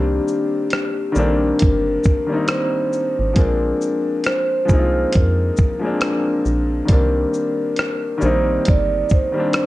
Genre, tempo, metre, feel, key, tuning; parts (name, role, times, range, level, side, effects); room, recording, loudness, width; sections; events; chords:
lo-fi hip hop; 68 BPM; 4/4; swing 59% on 16ths; C minor; A4 = 441 Hz
vibraphone with soft mallets; melody; 0.0-9.7 s; G4 to D5; -22 LUFS; equal; low-pass filter
bright upright piano; accompaniment; 0.0-9.7 s; Eb3 to F4; -21 LUFS; left 1 dB; cassette tape, low-pass filter
woody FM bass; bass; 0.0-9.0 s; G1 to F2; -21 LUFS; equal
dusty soul sampler-style drum kit; drums; 0.3-9.7 s; hi-hat, kick drum, rim click, shaker; -18 LUFS; equal; vintage 12-bit sampler grit
light reverb, digital ambience; cassette tape; -16 LUFS; side -17 dB against mid
0.0-9.7 A section
0.0 Cm7; 3.4 Bb7; 6.9 Cm7